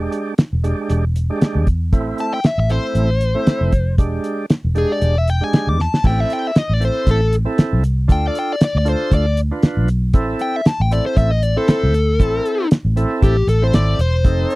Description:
straight-eighth soul blues; 117 BPM; 4/4; swing 55% on 16ths; A4 = 440 Hz
tonewheel organ; accompaniment; 0.0-14.6 s; G#3 to C5; -22 LUFS; right 3 dB; slow rotary speaker, overdrive
vintage muted fingered electric bass; bass; 0.0-14.4 s; E1 to E2; -17 LUFS; equal
cloth-damped thuddy drum kit; drums; 0.1-14.6 s; crash cymbal, hi-hat, kick drum, snare drum; -14 LUFS; equal
dark smooth lead guitar; melody; 2.2-14.6 s; G4 to D6; -20 LUFS; left 2 dB; overdrive
little or no reverb; dry, close 1970s-style studio recording; -15 LUFS; side -20 dB against mid
0.0-6.0 A section; 6.0-14.6 B section
drum fill 5.8; lead electric guitar solo 6.0-14.6
0.0 E7#9; 1.9 Am; 4.0 E7#9; 6.0 Am; 8.1 Dm; 10.1 Am

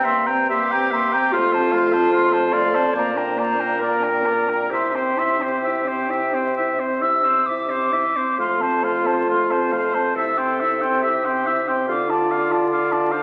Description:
classical, slow romantic movement for wind quintet; 64-76 BPM; 4/4; rubato; A4 = 439 Hz
silver concert flute; melody; 0.0-13.2 s; G5 to E6; -25 LUFS; equal
clear oboe; second line; 0.0-13.2 s; Bb4 to G5; -26 LUFS; equal
bright clarinet; accompaniment; 0.0-13.2 s; C4 to D5; -27 LUFS; equal
warm French horn; accompaniment; 0.0-13.2 s; A3 to F4; -31 LUFS; equal
mellow bassoon; bass; 0.0-13.2 s; F2 to D3; -28 LUFS; equal
wet recital hall reverb, RT60 1.7 s; very old 78 rpm record, vinyl crackle, lossy compression artefacts; -20 LUFS; mono
0.0-13.2 A section
0.0 C7/G; 1.3 F; 2.9 Gm/Bb; 4.7 C; 8.4 F; 10.2 C; 11.9 Dm

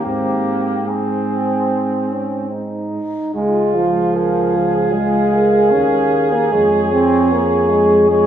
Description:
classical, brass quintet; 72-77 BPM; 4/4; rubato; Ab major, Db major from 3.4 s; A4 = 440 Hz
dark trumpet; melody; 0.0-8.3 s; G4 to F5; -23 LUFS; left 7 dB
warm flugelhorn; second line; 0.0-8.3 s; Bb3 to Ab4; -20 LUFS; right 4 dB
mellow trombone; accompaniment; 0.0-8.3 s; F3 to Eb4; -17 LUFS; right 2 dB
warm tuba; bass; 0.0-8.3 s; Db2 to Ab2; -23 LUFS; right 2 dB
warm French horn; accompaniment; 0.1-8.3 s; C4 to Bb4; -22 LUFS; left 3 dB
wet recital hall reverb, RT60 1.6 s; recorded in a church or concert hall; -14 LUFS; side -10 dB against mid
0.0-3.4 A section; 3.4-8.3 B section
0.1 Ab; 3.4 Db; 6.5 Db/F

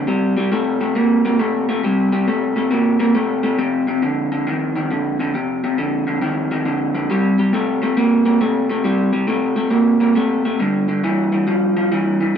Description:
blues; 137 BPM; 4/4; swing 66% on 8ths; C mixolydian; A4 = 438 Hz
electric guitar through a small old amp; solo; 0.0-12.4 s; F2 to Bb3; -16 LUFS; equal; spring reverb
moderate stone room reverb, RT60 1.2 s; band playing live in one room; -16 LUFS; side -8 dB against mid
0.0-12.4 A section
0.1 C5; 3.6 F5; 7.1 C5; 10.6 G5

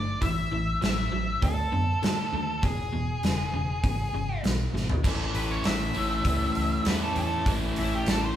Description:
blues rock power trio and southern rock; 99 BPM; 4/4; straight; A major; A4 = 440 Hz
octave-fuzz lead guitar; melody; 0.0-8.4 s; E4 to E5; -31 LUFS; equal; distortion
crunchy overdriven guitar; riff; 0.0-8.4 s; E2 to E4; -30 LUFS; left 1 dB
vintage muted picked electric bass; bass; 0.0-8.3 s; E1 to A2; -31 LUFS; equal
big rock drum kit; drums; 0.2-8.2 s; crash cymbal, hi-hat, kick drum, snare drum, toms; -29 LUFS; equal
wet large studio reverb, RT60 1.1 s; band playing live in one room; -24 LUFS; side -11 dB against mid
0.0-5.0 A section; 5.0-8.4 B section
drum fill 4.7-5.0; lead electric guitar solo 5.0-8.4
0.2 A5; 1.4 D; 2.6 E; 5.0 A

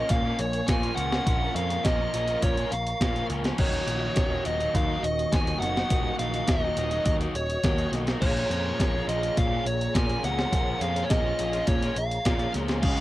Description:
indie rock; 104 BPM; 4/4; straight; A4 = 439 Hz
fuzz lead guitar; melody; 0.0-13.0 s; Db5 to Ab5; -29 LUFS; equal; distortion
mellow tonewheel organ; sustained chords; 0.0-13.0 s; Gb4 to Db6; -36 LUFS; equal; chorus vibrato, fast rotary speaker, cassette tape
fuzz guitar; riff; 0.0-13.0 s; Eb2 to Ab4; -31 LUFS; equal; distortion, cassette tape
overdriven picked electric bass; bass; 0.0-13.0 s; Eb1 to Bb2; -31 LUFS; equal
breakbeat sampler-style drum kit; drums; 0.1-13.0 s; crash cymbal, hi-hat, kick drum, snare drum; -27 LUFS; equal; cassette tape
little or no reverb; home recording on cassette; -23 LUFS; side -16 dB against mid
0.0-13.0 A section
0.0 Bbm7; 3.6 Ebm7; 8.2 Bbm7

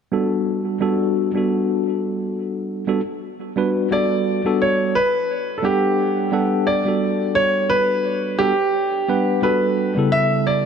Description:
chillout; 87 BPM; 4/4; swing 57% on 16ths; G lydian; A4 = 440 Hz
tine electric piano; accompaniment; 0.1-10.7 s; C#3 to F#5; -20 LUFS; equal; auto-pan, low-pass filter, tape echo
warm concert grand piano; melody; 3.9-10.7 s; G4 to E5; -19 LUFS; right 1 dB; tape echo
moderate lush hall reverb, RT60 2.9 s; -17 LUFS; side -7 dB against mid
0.0-4.6 A section; 4.6-10.7 B section
filter sweep on tine electric piano 0.0-4.6
0.0 Gmaj7; 10.1 A7

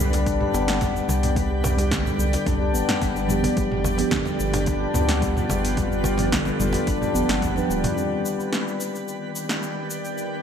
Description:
organic downtempo; 109 BPM; 4/4; straight; A4 = 442 Hz
muted felt-like synth keys; accompaniment; 0.0-10.4 s; Eb3 to B4; -30 LUFS; right 5 dB; chorus, sidechain pumping, digital delay
bowed-like drone; sustained chords; 0.0-10.4 s; Eb3 to G5; -30 LUFS; left 1 dB; built-in reverb, sidechain pumping
handpan; arpeggios; 0.0-8.0 s; D3 to G4; -26 LUFS; left 3 dB; digital delay
warm sub bass; bass; 0.0-7.9 s; D1 to D2; -26 LUFS; equal; sidechain pumping
twinkling granular texture; texture; 0.0-10.4 s; B3 to B5; -36 LUFS; left 1 dB; built-in reverb
deep house drum kit; drums; 0.1-10.3 s; hi-hat, shaker, snare drum, toms; -27 LUFS; equal; overdrive, gated reverb
cajon; percussion; 0.1-7.9 s; -33 LUFS; right 2 dB
electronic kick drum; drums; 0.3-7.5 s; -28 LUFS; equal; overdrive
moderate plate reverb, RT60 2.0 s; bright 1980s-style digital production; -20 LUFS; side -8 dB against mid
0.0-8.0 A section; 8.0-10.4 B section
0.0 G7; 8.0 Cmadd9

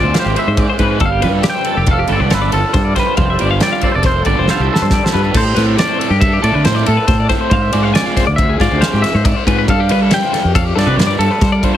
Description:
math rock and midwest emo; 138 BPM; 5/4; straight; A4 = 440 Hz
twangy electric guitar; melody; 0.0-11.8 s; A4 to G5; -19 LUFS; right 1 dB
twangy electric guitar; accompaniment; 0.0-7.5 s; D3 to C5; -25 LUFS; right 10 dB; ensemble chorus
twelve-string electric guitar; arpeggios; 0.0-11.8 s; F4 to Ab5; -20 LUFS; left 8 dB; tremolo
biting overdriven guitar; riff; 0.0-11.8 s; G3 to C5; -21 LUFS; right 2 dB
fuzz fingered electric bass; bass; 0.0-11.6 s; F1 to G3; -16 LUFS; equal; overdrive
loose indie drum kit; drums; 0.1-11.7 s; crash cymbal, kick drum, ride cymbal, snare drum; -17 LUFS; equal
little or no reverb; heavily compressed radio sound; -11 LUFS; side -11 dB against mid
0.0-5.4 A section; 5.4-11.8 B section
drum fill 4.5-5.4
0.0 Fmadd9/Ab; 1.0 G9sus4; 5.4 Am7; 7.5 Fm; 9.7 G9sus4

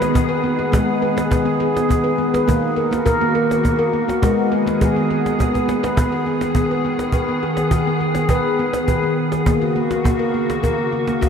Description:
world meditative, meditative tuned percussion; 103 BPM; 3/4; straight; G# minor; A4 = 440 Hz
glassy FM pad; sustained chords; 0.0-11.3 s; C#3 to G#4; -21 LUFS; left 1 dB; ensemble chorus, built-in reverb
handpan; arpeggios; 0.0-11.3 s; D#3 to B4; -19 LUFS; equal; ping-pong delay
cajon; percussion; 0.0-11.3 s; -22 LUFS; right 1 dB
wet huge ambient reverb, RT60 7.8 s; in a vast, echoing space; -16 LUFS; side -7 dB against mid
0.0-6.0 A section; 6.0-11.3 B section
drum fill 5.5-6.0
0.0 G#m; 2.5 D#m; 4.2 G#m; 9.5 F#

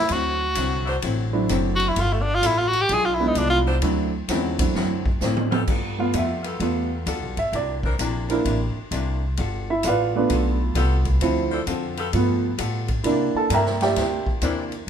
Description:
jazz, big band swing; 130 BPM; 4/4; swing 66% on 8ths; G mixolydian; A4 = 441 Hz
bright tenor saxophone; melody; 0.0-3.6 s; A3 to G#4; -21 LUFS; equal
archtop guitar, miked and amplified; accompaniment; 0.1-14.7 s; C3 to A4; -30 LUFS; left 5 dB
upright bass; bass; 0.1-14.9 s; F#1 to C3; -25 LUFS; equal
swinging big-band drum kit; drums; 0.1-14.8 s; crash cymbal, hi-hat, kick drum, ride cymbal, snare drum, toms; -29 LUFS; equal
warm saxophone section; sustained chords; 0.9-14.6 s; E3 to C5; -31 LUFS; left 2 dB
clear concert grand piano; accompaniment; 1.3-14.8 s; F3 to Bb5; -23 LUFS; right 3 dB
moderate large studio reverb, RT60 0.9 s; minimal, uncompressed stereo recording; -20 LUFS; side -8 dB against mid
0.0-5.7 A section; 5.7-14.9 A section
tenor saxophone solo 0.0-5.7; drum fill 5.2-5.7; grand piano solo 5.7-14.9
0.1 D9; 2.0 G9; 2.9 E7b9; 3.8 D9; 5.7 G9; 7.5 C9; 9.4 G9; 11.2 Dm7; 12.1 G9; 13.1 C9

